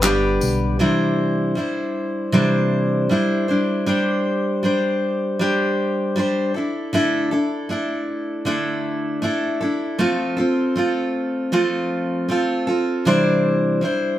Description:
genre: acoustic pop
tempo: 78 BPM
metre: 4/4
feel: straight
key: C major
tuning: A4 = 441 Hz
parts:
  - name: dark upright piano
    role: accompaniment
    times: 0.0-0.8 s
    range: D4 to G5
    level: -40 LUFS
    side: left 4 dB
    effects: none
  - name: picked steel-string acoustic guitar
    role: accompaniment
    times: 0.0-14.2 s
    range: C3 to C5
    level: -18 LUFS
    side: equal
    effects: none
  - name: tonewheel organ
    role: sustained chords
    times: 0.0-0.8 s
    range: D3 to G4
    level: -26 LUFS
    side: left 3 dB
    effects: stopped rotary speaker
  - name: upright bass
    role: bass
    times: 0.0-0.8 s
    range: G1 to B1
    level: -23 LUFS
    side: equal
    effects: none
  - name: handclaps and tambourine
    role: drums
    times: 0.0-0.6 s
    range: none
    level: -23 LUFS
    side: left 1 dB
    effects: none
room: moderate large studio reverb, RT60 0.9 s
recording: band playing live in one room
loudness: -18 LUFS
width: side -13 dB against mid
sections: 0.8-14.2 A section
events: none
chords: 0.0 G; 0.8 Cadd9; 3.9 Gsus4; 6.5 Dsus2; 10.0 F; 13.1 Cadd9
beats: 0.02 | 0.79 1.56 2.33 3.09 | 3.86 4.63 5.40 6.16 | 6.93 7.70 8.46 9.23 | 10.00 10.76 11.53 12.29 | 13.06 13.83

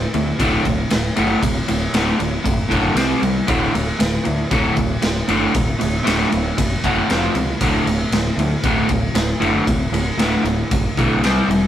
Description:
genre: garage rock duo or trio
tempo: 116 BPM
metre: 4/4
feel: straight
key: D major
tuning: A4 = 440 Hz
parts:
  - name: crunchy overdriven guitar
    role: riff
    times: 0.0-11.7 s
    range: D2 to C4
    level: -19 LUFS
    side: equal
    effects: none
  - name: growling fingered electric bass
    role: bass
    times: 0.0-11.6 s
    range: D1 to D2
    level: -23 LUFS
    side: equal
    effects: overdrive
  - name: raw garage drum kit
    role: drums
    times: 0.1-11.6 s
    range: kick drum, ride cymbal, snare drum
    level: -21 LUFS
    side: equal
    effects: none
room: moderate stone room reverb, RT60 1.3 s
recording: rough rehearsal-room recording, warm saturation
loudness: -16 LUFS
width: side -11 dB against mid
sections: 0.0-11.7 A section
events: none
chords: 0.0 D; 3.0 C5; 3.5 D; 7.1 F5; 7.6 D5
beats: 0.39 0.90 | 1.42 1.94 2.45 2.97 | 3.48 4.00 4.52 5.03 | 5.55 6.07 6.58 7.10 | 7.61 8.13 8.65 9.16 | 9.68 10.20 10.71 11.23

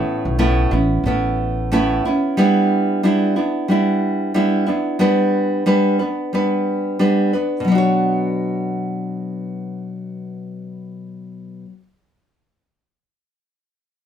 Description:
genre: pop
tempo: 91 BPM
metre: 4/4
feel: swing 60% on 16ths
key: B minor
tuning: A4 = 443 Hz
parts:
  - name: nylon-string guitar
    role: accompaniment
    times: 0.0-11.8 s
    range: A2 to C#5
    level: -17 LUFS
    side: equal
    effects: none
  - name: upright bass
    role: bass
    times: 0.3-2.0 s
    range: A1 to B1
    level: -21 LUFS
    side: right 1 dB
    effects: none
room: light reverb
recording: band playing live in one room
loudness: -16 LUFS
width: side -9 dB against mid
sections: 0.0-7.6 A section; 7.6-10.3 B section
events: none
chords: 0.0 Aadd9; 2.4 Em7/G; 5.0 G; 7.6 Bmadd9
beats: 0.38 1.04 1.70 | 2.36 3.02 3.68 4.34 | 5.00 5.66 6.32 6.99 | 7.65 8.31 8.97 9.63

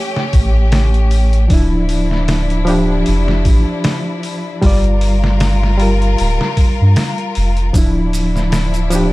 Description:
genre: trip hop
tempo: 77 BPM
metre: 4/4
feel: swing 56% on 16ths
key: D harmonic minor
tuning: A4 = 440 Hz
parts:
  - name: bright reed electric piano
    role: accompaniment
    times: 0.0-9.1 s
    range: F3 to E5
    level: -19 LUFS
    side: equal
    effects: fast tremolo, harmonic tremolo, vintage 12-bit sampler grit, tape echo
  - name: warm studio string section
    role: sustained chords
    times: 0.0-9.1 s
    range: F3 to Bb4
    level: -22 LUFS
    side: left 3 dB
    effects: none
  - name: trip hop sampler-style drum kit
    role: drums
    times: 0.2-9.1 s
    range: hi-hat, kick drum, snare drum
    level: -17 LUFS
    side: equal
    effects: none
  - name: soft dub sub bass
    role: bass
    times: 0.3-9.1 s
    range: D1 to G2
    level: -14 LUFS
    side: equal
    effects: none
  - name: maracas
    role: percussion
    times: 7.8-9.1 s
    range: none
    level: -30 LUFS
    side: right 4 dB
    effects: none
room: little or no reverb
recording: none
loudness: -12 LUFS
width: side -19 dB against mid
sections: 0.0-9.1 A section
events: none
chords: 0.0 A7; 1.5 Dmadd9; 4.6 Gm7; 7.7 Dmadd9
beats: 0.73 | 1.51 2.29 3.07 3.85 | 4.63 5.41 6.19 6.97 | 7.75 8.53

